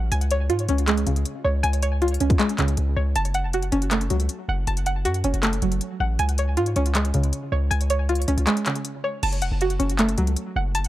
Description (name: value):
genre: hip hop, trap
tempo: 158 BPM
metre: 4/4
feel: half-time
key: F# harmonic minor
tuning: A4 = 442 Hz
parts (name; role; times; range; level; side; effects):
- string-like resonator pluck; arpeggios; 0.0-10.9 s; C#3 to A5; -24 LUFS; right 1 dB; chorus, low-pass filter, tape echo
- hard-hitting 808-style bass; bass; 0.0-10.9 s; E#1 to G#2; -23 LUFS; equal; none
- trap drum kit; drums; 0.1-10.9 s; crash cymbal, handclaps, hi-hat, kick drum; -27 LUFS; left 1 dB; none
room: little or no reverb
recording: dry, gritty hardware recording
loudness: -20 LUFS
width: side -15 dB against mid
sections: 0.0-9.2 A section; 9.2-10.9 B section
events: break 8.5-9.2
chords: 0.1 C#; 3.2 F#m; 6.2 C#; 9.2 F#m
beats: | 0.12 0.50 0.88 1.25 | 1.64 2.02 2.39 2.77 | 3.15 3.53 3.91 4.29 | 4.67 5.05 5.43 5.81 | 6.19 6.57 6.95 7.33 | 7.71 8.09 8.47 8.85 | 9.23 9.61 9.99 10.37 | 10.75